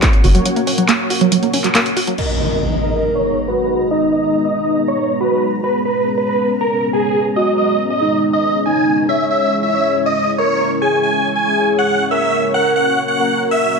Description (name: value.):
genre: uplifting trance.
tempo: 139 BPM.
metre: 4/4.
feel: straight.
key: G# minor.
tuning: A4 = 439 Hz.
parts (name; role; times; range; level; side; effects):
analog string pad; sustained chords; 0.0-13.8 s; G#3 to A#5; -21 LUFS; left 1 dB; ensemble chorus, sidechain pumping.
tight sequenced synth; arpeggios; 0.0-2.1 s; F#3 to F#4; -17 LUFS; right 3 dB; chorus, sidechain pumping, ping-pong delay.
techno drum kit; drums; 0.0-2.3 s; crash cymbal, handclaps, hi-hat; -19 LUFS; equal; none.
big supersaw lead; melody; 2.2-13.8 s; G#4 to G#5; -17 LUFS; right 1 dB; sidechain pumping, low-pass filter, ping-pong delay.
warm velvety synth lead; second line; 2.2-13.8 s; D#4 to C#5; -19 LUFS; equal; chorus, cassette tape, ping-pong delay.
impact; sound effects; 2.2-3.9 s; none; -22 LUFS; equal; none.
room: moderate lush hall reverb, RT60 2.1 s.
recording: none.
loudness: -14 LUFS.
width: side -4 dB against mid.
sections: 0.0-2.2 A section; 2.2-13.8 B section.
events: filter sweep on synth arpeggio sound 0.0-2.2; filter sweep on analog synth pad 0.0-2.2; impact 2.2-3.9; filter sweep on supersaw synth 2.2-13.8.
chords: 0.0 F#; 2.2 G#madd9; 9.1 C#m; 12.5 F#.